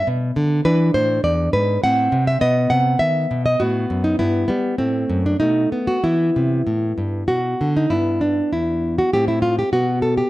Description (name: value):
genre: classical, baroque-style dance for nylon-string guitar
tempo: 100 BPM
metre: 3/4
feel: rubato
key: E minor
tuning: A4 = 442 Hz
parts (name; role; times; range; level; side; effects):
- nylon-string guitar; solo; 0.0-10.3 s; E2 to F#5; -16 LUFS; equal; slapback echo
room: little or no reverb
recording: dry, close 1970s-style studio recording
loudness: -16 LUFS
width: side -17 dB against mid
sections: 0.0-7.9 A section; 7.9-10.3 A section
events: none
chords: 0.0 N.C.; 0.7 E7; 1.8 Am; 2.4 B; 3.6 B5/A; 4.2 Em/G; 4.8 F#dim/A; 5.4 B7; 6.0 Em; 7.9 Em/G; 9.1 Am7; 9.7 B5